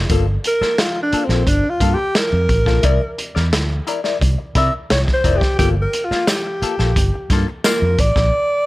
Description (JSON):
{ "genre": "funk", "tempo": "87 BPM", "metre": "4/4", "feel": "straight", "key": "G dorian", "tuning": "A4 = 440 Hz", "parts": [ { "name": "vintage muted fingered electric bass", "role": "bass", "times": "0.0-8.3 s", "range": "F1 to C3", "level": "-18 LUFS", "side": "equal", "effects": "tube saturation" }, { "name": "hollow-body jazz guitar", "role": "accompaniment", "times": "0.1-8.2 s", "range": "Bb3 to D5", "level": "-24 LUFS", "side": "left 6 dB", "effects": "wah" }, { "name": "crunchy breakbeat drum kit", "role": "drums", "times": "0.1-8.3 s", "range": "hi-hat, kick drum, snare drum", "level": "-19 LUFS", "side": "equal", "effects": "none" }, { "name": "breathy alto saxophone", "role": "melody", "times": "0.5-8.7 s", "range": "C4 to E5", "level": "-19 LUFS", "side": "equal", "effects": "none" }, { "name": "tambourine", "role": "percussion", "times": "6.3-7.8 s", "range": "none", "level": "-27 LUFS", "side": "left 4 dB", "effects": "none" } ], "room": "light reverb, small room ambience", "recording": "none", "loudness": "-15 LUFS", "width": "side -18 dB against mid", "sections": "0.1-8.7 A section", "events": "alto saxophone solo 0.1-8.7; band accent 8.3-8.7", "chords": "0.1 Gm9; 2.8 C9; 5.6 Gm9", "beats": "| 0.10 0.79 1.48 2.16 | 2.85 3.54 4.22 4.91 | 5.59 6.28 6.97 7.65 | 8.34" }